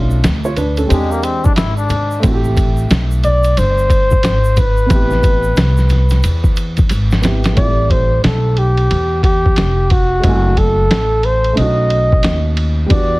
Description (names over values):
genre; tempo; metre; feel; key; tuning
hip hop, jazz-hop; 90 BPM; 4/4; swing 63% on 16ths; A minor; A4 = 438 Hz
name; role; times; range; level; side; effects
dark baby grand piano; accompaniment; 0.0-13.2 s; G3 to G#5; -22 LUFS; right 2 dB; plate reverb
upright bass; bass; 0.0-13.2 s; F1 to E2; -15 LUFS; equal; none
egg shaker and congas; percussion; 0.1-7.6 s; none; -27 LUFS; left 2 dB; none
lo-fi sampler-style drum kit; drums; 0.2-13.1 s; hi-hat, kick drum, ride cymbal, snare drum; -16 LUFS; equal; none
trombone with straight mute; second line; 0.9-2.2 s; G#3 to E4; -20 LUFS; left 4 dB; plate reverb
mellow flugelhorn; melody; 3.2-13.2 s; F#4 to D#5; -17 LUFS; equal; plate reverb, tape echo
room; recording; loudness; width
light reverb; heavily compressed radio sound; -11 LUFS; side -21 dB against mid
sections
0.0-7.6 A section; 7.6-13.2 B section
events
drum fill 6.9-7.6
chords
0.0 Bm7b5; 0.9 E7alt; 2.2 Am9; 10.2 F#m7b5; 11.6 B7